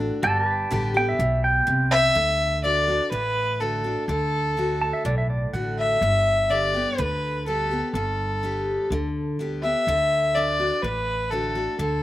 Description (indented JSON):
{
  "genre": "honky-tonk and classic country",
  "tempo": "124 BPM",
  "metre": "4/4",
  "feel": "straight",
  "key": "unclear",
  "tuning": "A4 = 440 Hz",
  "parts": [
    { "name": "picked steel-string acoustic guitar", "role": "accompaniment", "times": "0.0-12.0 s", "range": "G2 to G4", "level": "-29 LUFS", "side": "left 2 dB", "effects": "none" },
    { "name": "pedal steel guitar", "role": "sustained chords", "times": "0.0-2.1 s", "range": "F#4 to D5", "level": "-34 LUFS", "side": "right 1 dB", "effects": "none" },
    { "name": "upright bass", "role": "bass", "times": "0.0-12.0 s", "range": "G1 to D2", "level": "-28 LUFS", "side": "equal", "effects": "none" },
    { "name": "pedal steel guitar", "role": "second line", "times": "0.2-5.8 s", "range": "D5 to A5", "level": "-23 LUFS", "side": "right 2 dB", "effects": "none" },
    { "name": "dark fiddle", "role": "melody", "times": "1.9-12.0 s", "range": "A4 to E5", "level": "-22 LUFS", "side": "equal", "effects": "none" }
  ],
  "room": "little or no reverb",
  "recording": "recorded outdoors, with no room sound",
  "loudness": "-21 LUFS",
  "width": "side -14 dB against mid",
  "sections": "0.0-2.2 A section; 2.2-12.0 B section",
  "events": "pedal steel guitar solo 0.0-2.2",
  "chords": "0.2 G; 2.2 D; 6.0 G; 9.9 D"
}